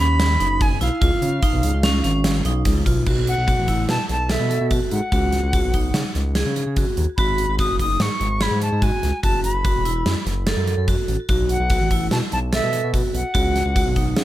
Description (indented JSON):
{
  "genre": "progressive instrumental, band music in an uneven meter",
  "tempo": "146 BPM",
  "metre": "5/4",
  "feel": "straight",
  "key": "unclear",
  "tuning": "A4 = 440 Hz",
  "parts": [
    { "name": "bright reedy jazz flute", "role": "melody", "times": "0.0-14.2 s", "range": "E5 to D#6", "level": "-25 LUFS", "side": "equal", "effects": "digital delay" },
    { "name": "vibraphone with hard mallets", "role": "arpeggios", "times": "0.0-14.2 s", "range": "C#4 to A4", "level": "-25 LUFS", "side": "right 2 dB", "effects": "digital delay" },
    { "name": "smooth synth bass", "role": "bass", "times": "0.0-14.2 s", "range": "E1 to C#3", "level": "-22 LUFS", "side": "equal", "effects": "none" },
    { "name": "gated 80s drum kit", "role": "drums", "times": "0.2-14.2 s", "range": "crash cymbal, hi-hat, kick drum, snare drum", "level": "-22 LUFS", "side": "equal", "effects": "none" }
  ],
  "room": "light reverb",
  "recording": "none",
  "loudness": "-18 LUFS",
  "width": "side -14 dB against mid",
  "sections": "0.0-3.1 A section; 3.1-14.2 B section",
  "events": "none",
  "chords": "0.0 G#m7 (rootless); 1.0 C#; 3.1 B7sus4; 5.1 C#9sus4; 7.2 G#m7; 9.2 F#m7; 11.3 B7sus4; 13.3 C#9sus4",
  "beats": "0.19 0.60 | 1.01 1.42 1.83 2.24 2.65 | 3.06 3.48 3.89 4.30 4.71 | 5.12 5.53 5.94 6.35 6.76 | 7.18 7.59 8.00 8.41 8.82 | 9.23 9.64 10.05 10.47 10.88 | 11.29 11.70 12.11 12.52 12.93 | 13.34 13.75 14.16"
}